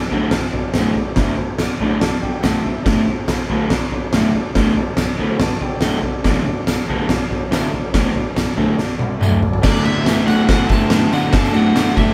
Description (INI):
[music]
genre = garage rock duo or trio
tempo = 142 BPM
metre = 4/4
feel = straight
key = D mixolydian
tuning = A4 = 441 Hz
[part]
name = combo organ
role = sustained chords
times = 0.0-12.1 s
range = F#4 to B5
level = -31 LUFS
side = equal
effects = none
[part]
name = crunchy overdriven guitar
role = riff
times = 0.1-12.1 s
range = D2 to D3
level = -20 LUFS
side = equal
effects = none
[part]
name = oversized low-tuned drum kit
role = drums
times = 0.1-12.1 s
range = crash cymbal, kick drum, ride cymbal, snare drum, toms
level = -20 LUFS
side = equal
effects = none
[part]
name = tambourine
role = percussion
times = 0.8-12.1 s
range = none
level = -40 LUFS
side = equal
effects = none
[part]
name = overdriven slide guitar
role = melody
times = 9.6-12.1 s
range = D5 to A5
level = -26 LUFS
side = equal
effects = none
[sound]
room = moderate small room ambience, RT60 0.5 s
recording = band playing live in one room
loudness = -18 LUFS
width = mono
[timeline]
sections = 0.0-9.6 A section; 9.6-12.1 B section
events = transistor combo organ fill 1.6-2.9, 5.0-6.3; drum fill 8.8-9.6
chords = 0.0 D